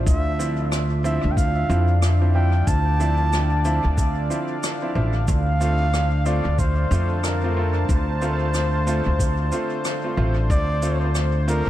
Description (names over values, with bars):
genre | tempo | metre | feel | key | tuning
ambient dub | 92 BPM | 4/4 | swing 60% on 16ths | unclear | A4 = 441 Hz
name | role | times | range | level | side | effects
warm analog pad | sustained chords | 0.0-11.7 s | D3 to A5 | -29 LUFS | equal | chorus
upright bass | bass | 0.0-11.7 s | A1 to F2 | -20 LUFS | equal | none
trumpet with bucket mute | melody | 0.1-11.7 s | Bb4 to A5 | -27 LUFS | equal | dub echo
electronic kick drum | drums | 0.1-10.7 s | none | -22 LUFS | equal | none
shaker and rim click | drums | 0.1-11.6 s | none | -33 LUFS | equal | dub echo
clear upright piano | stabs | 0.4-11.6 s | F3 to F4 | -29 LUFS | right 1 dB | dub echo
room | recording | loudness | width
light reverb, small room ambience | none | -19 LUFS | side -13 dB against mid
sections
0.0-11.7 A section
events
none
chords
0.0 Dm7; 5.3 F